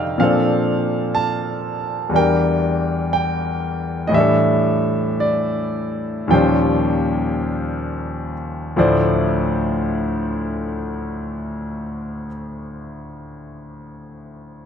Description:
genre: jazz ballad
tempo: 46-63 BPM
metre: 4/4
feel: swing 68% on 8ths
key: D minor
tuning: A4 = 441 Hz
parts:
  - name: clear grand piano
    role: solo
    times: 0.0-14.7 s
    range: D2 to A5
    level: -18 LUFS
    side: equal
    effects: none
room: wet echo chamber reverb, RT60 2.2 s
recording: none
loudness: -17 LUFS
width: side -8 dB against mid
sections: 0.2-8.8 A section; 8.8-14.0 B section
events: slowing down 0.2-8.8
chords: 0.2 Bbmaj9; 2.1 Em7b5; 4.1 A7sus4; 6.3 Eb13; 8.8 Dm9

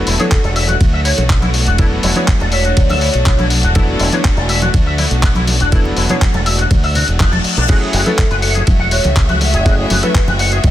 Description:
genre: nu-disco, nu disco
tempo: 122 BPM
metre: 4/4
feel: straight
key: unclear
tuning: A4 = 439 Hz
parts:
  - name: bright electric grand piano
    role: accompaniment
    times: 0.0-10.1 s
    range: F#3 to C#5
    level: -22 LUFS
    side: equal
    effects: digital delay
  - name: rich chamber string section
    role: sustained chords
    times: 0.0-10.7 s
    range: A3 to E5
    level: -23 LUFS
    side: left 1 dB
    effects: sidechain pumping
  - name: electric guitar with an envelope filter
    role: riff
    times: 0.1-10.6 s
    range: B3 to F#5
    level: -21 LUFS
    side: left 3 dB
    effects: ensemble chorus, digital delay
  - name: fingered electric bass with an envelope filter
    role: bass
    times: 0.1-10.7 s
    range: E1 to D2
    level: -16 LUFS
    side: equal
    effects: none
  - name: dusty soul sampler-style drum kit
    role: drums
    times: 0.1-10.7 s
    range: crash cymbal, handclaps, hi-hat, ride cymbal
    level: -20 LUFS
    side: left 1 dB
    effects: studio reverb
  - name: vibraphone with hard mallets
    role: melody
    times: 0.2-3.4, 8.1-10.1 s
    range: A4 to E5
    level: -22 LUFS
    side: equal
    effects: digital delay
  - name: congas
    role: percussion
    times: 0.2-10.7 s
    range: none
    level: -23 LUFS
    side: equal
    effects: none
  - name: electronic kick drum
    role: drums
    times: 0.3-10.7 s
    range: none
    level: -13 LUFS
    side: equal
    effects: studio reverb
  - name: reverse cymbal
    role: sound effects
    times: 7.1-7.7 s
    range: none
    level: -25 LUFS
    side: left 6 dB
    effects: none
room: little or no reverb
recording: dense, heavily limited modern master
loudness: -11 LUFS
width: side -13 dB against mid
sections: 0.0-10.7 A section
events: reverse cymbal 7.1-7.7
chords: 0.0 E9sus4; 7.7 F#m7

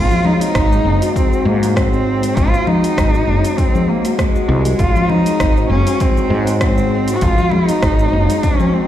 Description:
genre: organic downtempo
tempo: 99 BPM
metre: 4/4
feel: swing 55% on 16ths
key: Ab mixolydian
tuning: A4 = 440 Hz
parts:
  - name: dark cello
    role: melody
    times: 0.0-8.9 s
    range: Ab3 to Gb4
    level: -18 LUFS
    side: right 1 dB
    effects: ping-pong delay
  - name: handpan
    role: arpeggios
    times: 0.0-8.9 s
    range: Gb3 to Gb4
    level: -20 LUFS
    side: left 2 dB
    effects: ping-pong delay
  - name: woody fretless electric bass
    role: bass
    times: 0.0-8.3 s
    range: Gb1 to Ab2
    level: -17 LUFS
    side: equal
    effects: sidechain pumping
  - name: deep house drum kit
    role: drums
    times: 0.1-8.7 s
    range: congas, hi-hat, rim click, shaker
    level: -21 LUFS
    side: left 2 dB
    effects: overdrive
  - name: electronic kick drum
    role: drums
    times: 0.6-8.6 s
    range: none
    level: -18 LUFS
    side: equal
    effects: overdrive
room: light reverb, digital ambience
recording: played on a big sound system in a bare room, stone room reverb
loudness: -12 LUFS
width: side -11 dB against mid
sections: 0.0-8.9 A section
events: none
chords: 0.0 Ab7

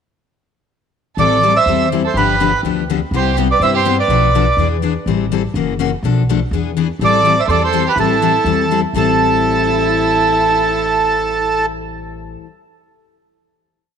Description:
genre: acoustic string swing (jazz manouche)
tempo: 247 BPM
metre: 4/4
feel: swing 54% on 8ths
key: A minor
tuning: A4 = 440 Hz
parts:
  - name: accordion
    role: melody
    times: 1.2-4.7, 7.0-11.7 s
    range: A4 to E5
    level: -15 LUFS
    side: right 3 dB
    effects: none
  - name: warm violin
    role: second line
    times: 1.2-4.7, 7.0-11.6 s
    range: E4 to C5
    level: -22 LUFS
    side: right 9 dB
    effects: none
  - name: picked steel-string acoustic guitar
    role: accompaniment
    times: 1.2-12.5 s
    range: A2 to A4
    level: -18 LUFS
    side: left 12 dB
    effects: none
  - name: upright bass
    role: bass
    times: 1.2-12.3 s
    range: F#1 to G2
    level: -21 LUFS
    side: equal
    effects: none
room: moderate plate reverb, RT60 2.5 s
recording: 1960s-style stereo with parts hard left and right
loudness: -12 LUFS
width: side -7 dB against mid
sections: 1.2-8.9 A section; 8.9-10.9 final chord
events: none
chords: 1.2 Am7; 2.2 G7; 3.1 Cmaj7; 4.1 Bm7b5; 4.6 E7; 5.1 Am7; 5.5 F#7; 6.0 Bm7b5; 6.5 E7; 7.0 Am7

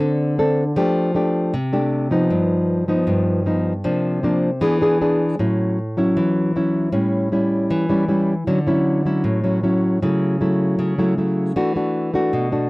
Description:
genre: bossa nova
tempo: 156 BPM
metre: 4/4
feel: straight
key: F major, A major from 5.4 s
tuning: A4 = 440 Hz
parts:
  - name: nylon-string guitar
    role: solo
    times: 0.0-12.7 s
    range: G2 to A4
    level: -17 LUFS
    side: equal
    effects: none
room: moderate booth ambience, RT60 0.2 s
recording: dry, close 1970s-style studio recording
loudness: -17 LUFS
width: side -23 dB against mid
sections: 0.0-5.4 A section; 5.4-12.7 B section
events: none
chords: 0.0 Amadd11/D; 0.8 F69; 2.3 Gaug7; 3.9 C9sus4; 4.6 E7; 5.4 A6; 6.9 A7; 8.5 Dmaj9; 10.0 A6/C#; 11.6 E9sus4

